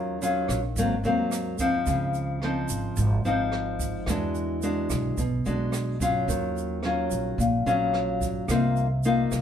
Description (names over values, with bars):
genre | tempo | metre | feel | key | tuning
bossa nova | 109 BPM | 4/4 | straight | unclear | A4 = 440 Hz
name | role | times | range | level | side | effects
nylon-string guitar | accompaniment | 0.0-9.4 s | Ab2 to F#4 | -25 LUFS | left 2 dB | none
upright bass | bass | 0.0-9.4 s | Ab1 to E2 | -29 LUFS | right 1 dB | none
jazz brush drum kit | drums | 0.2-9.4 s | hi-hat, kick drum, rim click | -34 LUFS | right 2 dB | none
egg shaker | percussion | 0.2-9.4 s | none | -38 LUFS | right 6 dB | none
room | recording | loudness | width
moderate studio reverb, RT60 0.9 s | band playing live in one room | -24 LUFS | side -8 dB against mid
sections
0.0-9.4 A section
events
none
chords
0.0 Ebm9; 0.8 Ab9; 1.9 Dbmaj9; 4.1 E9; 6.3 Ebm9; 8.5 Cm7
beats
0.22 0.77 1.32 | 1.88 2.43 2.98 3.53 | 4.08 4.63 5.18 5.73 | 6.28 6.83 7.38 7.93 | 8.48 9.04